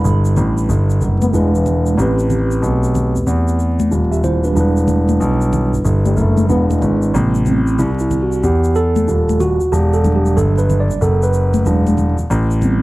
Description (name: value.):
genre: hip hop, jazz-hop.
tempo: 93 BPM.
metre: 4/4.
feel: swing 63% on 16ths.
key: A dorian.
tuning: A4 = 440 Hz.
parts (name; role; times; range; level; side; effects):
mellow tine electric piano; accompaniment; 0.0-12.8 s; C3 to E5; -18 LUFS; right 2 dB; medium stereo tremolo.
dark concert grand piano; bass; 0.0-12.8 s; D#1 to E2; -15 LUFS; equal; none.
egg shaker and congas; percussion; 0.0-12.8 s; none; -24 LUFS; left 3 dB; none.
breathy trombone; second line; 1.2-2.0, 6.0-7.1 s; E3 to B3; -21 LUFS; left 2 dB; none.
room: small room ambience.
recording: dark, warm production, vinyl crackle.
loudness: -13 LUFS.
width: side -18 dB against mid.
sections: 0.0-7.1 A section; 7.1-12.8 B section.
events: tine electric piano solo 7.1-12.8.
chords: 0.0 Em7; 1.3 E7; 2.0 Am9; 4.6 Em7; 6.5 E7; 7.1 Am9; 9.7 Em7; 11.7 E7; 12.3 Am9.